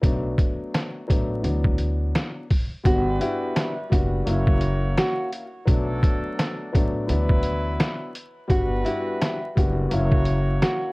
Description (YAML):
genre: hip hop, boom-bap hip-hop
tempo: 85 BPM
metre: 4/4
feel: swing 62% on 16ths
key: B minor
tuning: A4 = 441 Hz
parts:
  - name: dark grand piano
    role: accompaniment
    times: 0.0-10.9 s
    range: E3 to F#4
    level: -28 LUFS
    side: left 2 dB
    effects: high-pass filter, low-pass filter
  - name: upright bass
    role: bass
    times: 0.0-10.6 s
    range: F#1 to D2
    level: -24 LUFS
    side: equal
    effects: tube saturation
  - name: trip hop sampler-style drum kit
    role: drums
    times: 0.0-10.8 s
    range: hi-hat, kick drum, rim click, snare drum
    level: -22 LUFS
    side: equal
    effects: none
  - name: nylon-string guitar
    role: melody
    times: 2.9-10.9 s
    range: E4 to F#4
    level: -27 LUFS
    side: equal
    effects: high-pass filter, low-pass filter
  - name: warm horn section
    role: stabs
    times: 2.9-10.9 s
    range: F#3 to C#5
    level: -33 LUFS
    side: right 1 dB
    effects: high-pass filter, low-pass filter, tape echo
room: light reverb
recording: worn, warbling old tape, cassette tape, vinyl crackle, warbly pitch drift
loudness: -20 LUFS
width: side -24 dB against mid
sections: 0.0-2.9 A section; 2.9-10.9 B section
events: none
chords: 0.0 Bm7; 1.4 D69; 2.9 Gmaj7; 4.3 F#7; 5.7 Bm7; 7.1 D69; 8.5 Gmaj7; 9.9 F#7